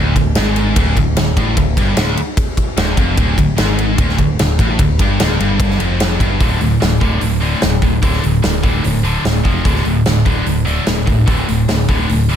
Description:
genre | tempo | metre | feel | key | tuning
hard rock | 148 BPM | 4/4 | straight | D minor | A4 = 440 Hz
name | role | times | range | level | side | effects
scooped high-gain guitar | riff | 0.0-12.4 s | D2 to F3 | -16 LUFS | equal | distortion
picked electric bass | bass | 0.0-12.4 s | D1 to A1 | -18 LUFS | equal | none
huge arena drum kit | drums | 0.2-12.4 s | hi-hat, kick drum, ride cymbal, snare drum | -17 LUFS | equal | none
room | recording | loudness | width
little or no reverb | none | -12 LUFS | side -9 dB against mid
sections
0.0-6.4 A section; 6.4-12.4 B section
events
none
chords
0.0 Dm; 6.4 D5; 9.4 F5; 9.7 D5

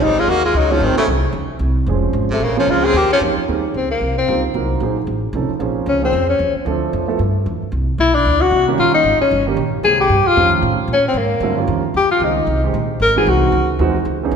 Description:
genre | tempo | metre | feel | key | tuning
jazz, small-group swing and bop | 226 BPM | 4/4 | swing 60% on 8ths | Ab major | A4 = 440 Hz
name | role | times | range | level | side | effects
warm tenor saxophone | melody | 0.0-13.7 s | A3 to Bb4 | -16 LUFS | left 3 dB | none
edgy baritone saxophone | second line | 0.0-3.2 s | C3 to C4 | -22 LUFS | right 2 dB | none
upright bass | bass | 0.0-14.4 s | F1 to Bb2 | -20 LUFS | equal | none
warm grand piano | accompaniment | 0.7-14.4 s | D3 to Bb4 | -21 LUFS | right 6 dB | none
room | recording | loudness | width
wet concert hall reverb, RT60 2.0 s | recorded in a church or concert hall | -14 LUFS | side -6 dB against mid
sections
0.0-3.5 A section; 3.5-11.9 B section; 11.9-14.4 B section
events
tenor saxophone solo 3.5-14.4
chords
0.3 Ebm7; 0.8 Ab7b9; 1.3 Dbmaj7; 2.4 Bbm9; 2.9 Ebsus2; 3.5 Abmaj9; 4.5 Cm7b5; 5.1 F7b13; 5.6 Bbm9; 6.7 Dm9; 7.2 Em; 7.7 Csus2; 8.8 Eb7; 9.8 Abmaj9; 10.4 F7b13; 10.9 Abadd9; 11.4 Eb9; 11.9 Abmaj7; 13.0 Ab7b13

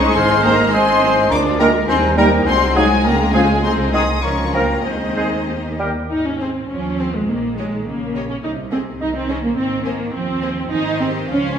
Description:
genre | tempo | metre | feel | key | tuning
quick classical-period movement for symphony orchestra | 103 BPM | 2/4 | rubato | Ab major | A4 = 443 Hz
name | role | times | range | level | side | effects
rich studio violin section | melody | 0.0-11.6 s | C5 to Eb6 | -23 LUFS | left 6 dB | none
clear oboe | second line | 0.0-5.9 s | Ab4 to F5 | -26 LUFS | right 3 dB | none
mellow silver concert flute | second line | 0.0-5.8 s | C5 to C6 | -24 LUFS | left 2 dB | none
warm studio violin section | second line | 0.0-11.6 s | Eb4 to Db5 | -28 LUFS | left 2 dB | none
warm bassoon | accompaniment | 0.0-5.9 s | Eb3 to Ab3 | -24 LUFS | right 2 dB | none
warm studio viola section | accompaniment | 0.0-11.6 s | F3 to F4 | -21 LUFS | right 1 dB | none
dark studio double bass section | bass | 0.0-11.6 s | Ab1 to Eb2 | -25 LUFS | right 2 dB | none
rich studio cello section | bass | 0.0-11.6 s | C3 to Eb4 | -24 LUFS | right 2 dB | none
warm clarinet | second line | 0.2-5.8 s | Eb4 to Eb5 | -24 LUFS | left 2 dB | none
timpani | percussion | 0.2-1.0 s | Ab2 | -30 LUFS | left 1 dB | none
warm trumpet section | stabs | 0.4-5.9 s | G4 to C5 | -24 LUFS | right 1 dB | none
dark French horn section | sustained chords | 0.5-5.9 s | Eb3 to Eb4 | -26 LUFS | left 3 dB | none
room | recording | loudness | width
wet recital hall reverb, RT60 1.6 s | recorded in a church or concert hall | -15 LUFS | side -8 dB against mid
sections
0.0-6.1 A section; 6.1-11.6 A section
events
none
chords
0.2 Ab; 1.3 Bb7/D; 1.9 Eb; 2.5 Ab7/C; 3.1 Db; 3.6 Ab/C; 4.2 Bbm/Db; 4.8 Ab/Eb; 5.5 Eb; 6.1 Ab; 7.3 Eb7(no3)/Bb; 8.4 Ab/C (rootless); 9.6 Ab

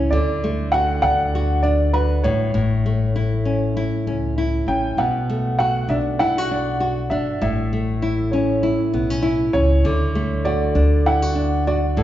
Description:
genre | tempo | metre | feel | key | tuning
pop | 99 BPM | 4/4 | swing 55% on 16ths | unclear | A4 = 440 Hz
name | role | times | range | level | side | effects
warm upright piano | melody | 0.0-12.0 s | A4 to G5 | -23 LUFS | right 1 dB | none
nylon-string guitar | accompaniment | 0.0-12.0 s | A2 to F#4 | -20 LUFS | left 1 dB | none
upright bass | bass | 0.0-12.0 s | G1 to D2 | -23 LUFS | equal | none
room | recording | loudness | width
wet recital hall reverb, RT60 1.6 s | recorded in a church or concert hall, nothing above 7.8 kHz | -17 LUFS | side -12 dB against mid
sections
0.0-12.0 A section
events
none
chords
0.1 D; 2.2 A; 5.0 Bm7; 7.4 A; 9.8 D

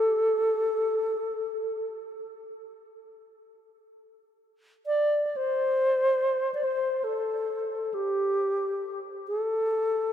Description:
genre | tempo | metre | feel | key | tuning
world meditative | free time | none | none | unclear | A4 = 440 Hz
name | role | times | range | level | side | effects
bright reedy bass flute | solo | 0.0-10.1 s | G4 to D5 | -25 LUFS | equal | tape echo
room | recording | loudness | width
wet huge ambient reverb, RT60 5.9 s | none | -25 LUFS | side -9 dB against mid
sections
0.0-10.1 A section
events
none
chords
none

